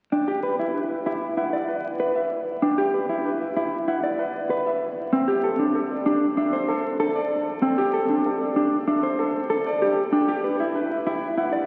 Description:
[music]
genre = classical, minimalist pattern music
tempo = 96 BPM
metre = 4/4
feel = straight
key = G major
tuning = A4 = 444 Hz
[part]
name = warm grand piano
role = melody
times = 0.1-11.6 s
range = G4 to G5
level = -31 LUFS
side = equal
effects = none
[part]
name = mellow electric guitar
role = arpeggios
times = 0.1-11.7 s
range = C4 to D5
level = -25 LUFS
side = equal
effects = none
[sound]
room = wet cathedral reverb, RT60 5.4 s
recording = very old 78 rpm record, vinyl crackle, nothing above 10.6 kHz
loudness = -24 LUFS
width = mono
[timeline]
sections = 0.0-11.7 A section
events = none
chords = 0.0 G6; 4.8 D7sus4; 9.8 G5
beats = 0.43 1.06 1.68 | 2.31 2.93 3.56 4.18 | 4.81 5.43 6.06 6.68 | 7.31 7.93 8.56 9.18 | 9.81 10.43 11.06

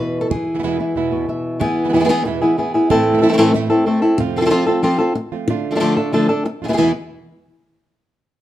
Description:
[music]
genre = flamenco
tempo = 186 BPM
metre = 4/4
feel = straight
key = E phrygian dominant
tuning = A4 = 440 Hz
[part]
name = flamenco guitar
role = melody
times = 0.0-6.9 s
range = A2 to E5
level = -15 LUFS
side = left 1 dB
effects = none
[part]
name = flamenco guitar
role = stabs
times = 0.0-6.9 s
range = E2 to F4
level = -23 LUFS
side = right 5 dB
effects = none
[sound]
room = moderate large studio reverb, RT60 1.1 s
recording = minimal, uncompressed stereo recording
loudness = -15 LUFS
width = side -13 dB against mid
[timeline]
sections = 0.0-1.6 A section; 1.6-6.8 B section; 6.8-8.1 C section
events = none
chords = 0.0 E; 2.9 Am; 4.2 F; 5.5 Dm; 6.8 E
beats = | 0.31 0.64 0.96 1.28 | 1.61 1.93 2.25 2.58 | 2.90 3.22 3.54 3.87 | 4.19 4.51 4.83 5.16 | 5.48 5.80 6.13 6.45 | 6.77

